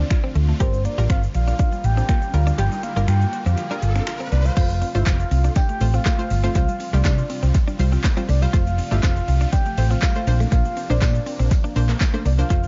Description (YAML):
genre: dance-pop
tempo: 121 BPM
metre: 4/4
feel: straight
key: F major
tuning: A4 = 440 Hz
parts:
  - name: soft octave-layered synth lead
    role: melody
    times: 0.0-12.7 s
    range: C5 to G5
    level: -31 LUFS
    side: equal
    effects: chorus, tremolo, tape echo
  - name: analog pluck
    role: accompaniment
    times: 0.0-12.7 s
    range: F3 to C5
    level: -33 LUFS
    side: equal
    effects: chorus, sidechain pumping, tape echo
  - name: supersaw chords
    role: sustained chords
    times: 0.0-12.7 s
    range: D3 to F4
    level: -37 LUFS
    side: equal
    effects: phaser, sidechain pumping
  - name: mallet-like synth pluck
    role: arpeggios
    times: 0.0-12.7 s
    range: F3 to F5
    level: -38 LUFS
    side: equal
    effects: none
  - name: direct-recorded clean electric guitar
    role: riff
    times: 0.0-12.6 s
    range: G3 to G4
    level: -34 LUFS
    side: equal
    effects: analog chorus
  - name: deep house drum kit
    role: drums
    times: 0.1-12.7 s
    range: crash cymbal, finger snaps, handclaps, hi-hat, kick drum, shaker, snare drum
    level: -24 LUFS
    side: equal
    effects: overdrive
  - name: hollow-body short-scale fingered electric bass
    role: bass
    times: 0.4-12.7 s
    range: F1 to C3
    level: -21 LUFS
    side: equal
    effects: sidechain pumping
  - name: riser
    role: sound effects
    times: 1.3-4.6 s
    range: none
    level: -39 LUFS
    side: equal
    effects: none
  - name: tambourine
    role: percussion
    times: 5.1-12.4 s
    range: none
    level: -47 LUFS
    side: equal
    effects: none
room: little or no reverb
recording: echo-heavy mix, nothing above 7.5 kHz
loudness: -20 LUFS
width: mono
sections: 0.0-4.6 A section; 4.6-12.7 B section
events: riser 1.3-4.6; kick muted 2.6-4.6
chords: 0.0 Dm7; 0.6 Gm7; 4.6 F; 6.6 Csus4; 8.5 F; 10.3 Bbadd9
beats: 0.11 | 0.60 1.10 1.59 2.09 | 2.59 3.08 3.58 4.08 | 4.57 5.07 5.56 6.06 | 6.55 7.05 7.55 8.04 | 8.54 9.03 9.53 10.03 | 10.52 11.02 11.51 12.01 | 12.50